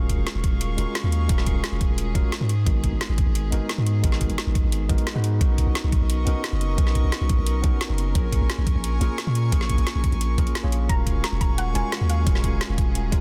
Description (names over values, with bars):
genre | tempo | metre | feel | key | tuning
liquid drum and bass | 175 BPM | 4/4 | straight | Eb minor | A4 = 440 Hz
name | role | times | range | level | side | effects
tine electric piano | accompaniment | 0.0-13.2 s | Ab3 to Db5 | -34 LUFS | equal | vintage 12-bit sampler grit, low-pass filter, delay
rich chamber string section | sustained chords | 0.0-13.2 s | Ab4 to Db6 | -38 LUFS | equal | none
long sustained 808-style bass | bass | 0.0-13.2 s | Eb1 to Bb2 | -26 LUFS | equal | none
electronic kick drum | drums | 0.1-13.2 s | none | -25 LUFS | equal | none
garage drum kit | drums | 0.1-13.2 s | hi-hat, snare drum | -34 LUFS | equal | none
soft round pluck | melody | 10.9-12.7 s | F5 to Bb5 | -36 LUFS | equal | lush chorus, digital delay
room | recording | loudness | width
little or no reverb | dense, heavily limited modern master | -23 LUFS | mono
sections
0.0-13.2 A section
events
filter sweep on tine electric piano 0.0-13.2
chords
0.0 Ebm11; 2.5 Abm7; 5.4 Bmaj9; 8.2 Bbm7; 10.9 Ebm11